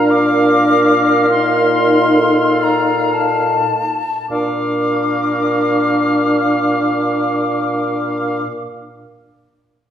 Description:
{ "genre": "classical, slow romantic movement for wind quintet", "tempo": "free time", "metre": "none", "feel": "none", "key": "Bb major", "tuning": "A4 = 443 Hz", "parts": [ { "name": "silver concert flute", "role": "melody", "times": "0.0-8.4 s", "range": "A5 to D6", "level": "-19 LUFS", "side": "left 4 dB", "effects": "none" }, { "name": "clear oboe", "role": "second line", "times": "0.0-8.4 s", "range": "F5", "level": "-21 LUFS", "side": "equal", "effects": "none" }, { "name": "mellow French horn", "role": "accompaniment", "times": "0.0-8.4 s", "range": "D4 to Eb4", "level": "-18 LUFS", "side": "left 1 dB", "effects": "none" }, { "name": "mellow clarinet", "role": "accompaniment", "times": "0.0-8.4 s", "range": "A4 to Bb4", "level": "-22 LUFS", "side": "right 5 dB", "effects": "none" }, { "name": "warm bassoon", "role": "bass", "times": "0.0-8.4 s", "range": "Bb2", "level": "-20 LUFS", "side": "right 1 dB", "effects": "none" } ], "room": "wet recital hall reverb, RT60 1.5 s", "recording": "heard from further back in the room", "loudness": "-13 LUFS", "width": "side -9 dB against mid", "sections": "0.0-4.3 A section; 4.3-9.9 B section", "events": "slowing down 0.0-4.3", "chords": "0.0 Bb; 1.3 F7/Bb; 4.3 Bb" }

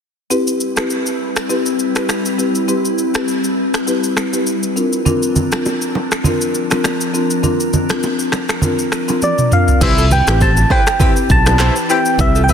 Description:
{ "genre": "afrobeats", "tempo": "101 BPM", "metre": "4/4", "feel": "swing 55% on 16ths", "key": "C major", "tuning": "A4 = 440 Hz", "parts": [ { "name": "marimba with soft mallets", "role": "accompaniment", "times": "0.3-12.5 s", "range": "C4 to B4", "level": "-19 LUFS", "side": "left 1 dB", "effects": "none" }, { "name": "glassy FM pad", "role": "sustained chords", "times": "0.7-12.5 s", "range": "E3 to B4", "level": "-22 LUFS", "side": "left 2 dB", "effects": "ensemble chorus, built-in reverb" }, { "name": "afro-pop drum kit", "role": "drums", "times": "0.3-12.5 s", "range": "crash cymbal, finger snaps, handclaps, kick drum, rim click, shaker, toms", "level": "-19 LUFS", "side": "equal", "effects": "soft clipping on snare" }, { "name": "congas and bongos", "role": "percussion", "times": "5.1-12.5 s", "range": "none", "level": "-20 LUFS", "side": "right 3 dB", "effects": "none" }, { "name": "soft struck synth lead", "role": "melody", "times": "9.2-12.5 s", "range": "D5 to A5", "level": "-16 LUFS", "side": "equal", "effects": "chorus, digital delay" }, { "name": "mellow horn section", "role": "second line", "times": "9.8-12.0 s", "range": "E3 to B4", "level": "-24 LUFS", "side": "left 4 dB", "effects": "none" }, { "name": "modern bright fingered electric bass", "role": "bass", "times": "9.8-12.5 s", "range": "A1 to C2", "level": "-14 LUFS", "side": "equal", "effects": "none" }, { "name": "nylon-string guitar", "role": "riff", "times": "10.0-12.5 s", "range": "F4 to C5", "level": "-26 LUFS", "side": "right 6 dB", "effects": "digital delay" } ], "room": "light reverb, studio ambience", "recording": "dense, heavily limited modern master", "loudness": "-13 LUFS", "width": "side -7 dB against mid", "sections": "0.3-9.8 A section; 9.8-12.5 B section", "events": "drum fill 9.2-9.8", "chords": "0.3 Cmaj7; 4.8 Bbadd9; 9.8 Cmaj7" }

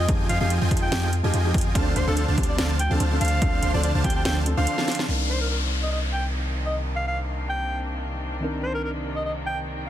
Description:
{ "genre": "future bass", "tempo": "144 BPM", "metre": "4/4", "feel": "swing 54% on 16ths, half-time", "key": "C minor", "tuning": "A4 = 440 Hz", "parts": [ { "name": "breathy alto saxophone", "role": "melody", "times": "0.0-9.6 s", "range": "A4 to G5", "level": "-30 LUFS", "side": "equal", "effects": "sidechain pumping, tape echo" }, { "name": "supersaw chords", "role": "riff", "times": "0.0-5.1 s", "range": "D3 to C6", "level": "-29 LUFS", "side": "right 1 dB", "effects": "sidechain pumping" }, { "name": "long sustained 808-style bass", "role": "bass", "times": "0.0-9.9 s", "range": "C2 to F2", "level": "-25 LUFS", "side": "equal", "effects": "sidechain pumping" }, { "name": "felt-muted upright piano", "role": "accompaniment", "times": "0.1-9.9 s", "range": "Eb3 to Bb4", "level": "-32 LUFS", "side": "equal", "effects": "sidechain pumping, tape echo" }, { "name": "electronic kick drum", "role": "drums", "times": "0.1-4.1 s", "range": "none", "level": "-25 LUFS", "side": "equal", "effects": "overdrive" }, { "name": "trap drum kit", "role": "drums", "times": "0.1-5.1 s", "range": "hi-hat, snare drum", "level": "-30 LUFS", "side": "right 1 dB", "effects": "overdrive" }, { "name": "clear studio string section", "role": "sustained chords", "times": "5.1-9.9 s", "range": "C3 to D4", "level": "-35 LUFS", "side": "left 1 dB", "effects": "sidechain pumping, low-pass filter" }, { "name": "downlifter", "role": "sound effects", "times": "5.1-8.4 s", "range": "none", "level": "-34 LUFS", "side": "left 3 dB", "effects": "none" } ], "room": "little or no reverb", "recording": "dense, heavily limited modern master", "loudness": "-22 LUFS", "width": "side -12 dB against mid", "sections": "0.0-5.1 A section; 5.1-9.9 B section", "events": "drop 0.0-5.1; drum fill 4.8-5.1; band accent 5.0; filter sweep on string section 5.1-9.9", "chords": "0.0 Fm9; 1.8 Dm7; 5.1 Cm9" }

